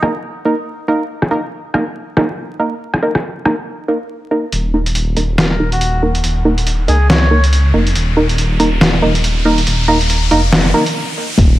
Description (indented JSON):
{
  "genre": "deep dubstep",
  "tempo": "140 BPM",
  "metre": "4/4",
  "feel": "swing 58% on 16ths, half-time",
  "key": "unclear",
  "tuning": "A4 = 440 Hz",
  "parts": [
    { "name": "melodica", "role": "melody", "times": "0.0, 5.4-7.4 s", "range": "Gb4 to Db5", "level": "-23 LUFS", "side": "left 1 dB", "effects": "low-pass filter, dub echo" },
    { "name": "filtered dub chord stab", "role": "stabs", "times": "0.0-10.8 s", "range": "Bb3 to Bb4", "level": "-17 LUFS", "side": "right 1 dB", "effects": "chorus, dub echo" },
    { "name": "trip hop sampler-style drum kit", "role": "drums", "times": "0.0-11.5 s", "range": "hi-hat, rim click, snare drum", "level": "-17 LUFS", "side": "equal", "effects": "low-pass filter on snare, low-pass filter on hats" },
    { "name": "dark detuned saw bass", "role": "bass", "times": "4.5-11.6 s", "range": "Eb1 to Db2", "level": "-14 LUFS", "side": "equal", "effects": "none" },
    { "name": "riser", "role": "sound effects", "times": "6.0-11.4 s", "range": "none", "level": "-23 LUFS", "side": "left 1 dB", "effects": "none" },
    { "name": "electronic kick drum", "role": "drums", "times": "11.4-11.5 s", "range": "none", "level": "-9 LUFS", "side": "equal", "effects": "none" },
    { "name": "congas", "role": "percussion", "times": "11.4-11.5 s", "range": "none", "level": "-15 LUFS", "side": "left 3 dB", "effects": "none" }
  ],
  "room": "light reverb",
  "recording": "vinyl crackle",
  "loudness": "-13 LUFS",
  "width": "side -15 dB against mid",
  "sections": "0.0-4.5 A section; 4.5-11.4 B section",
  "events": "build-up 4.5-11.4; filter sweep on synth stab 4.5-11.4; filter sweep on melodica 4.5-11.4; riser 6.0-11.4; stop 11.0-11.4",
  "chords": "0.0 Eb5"
}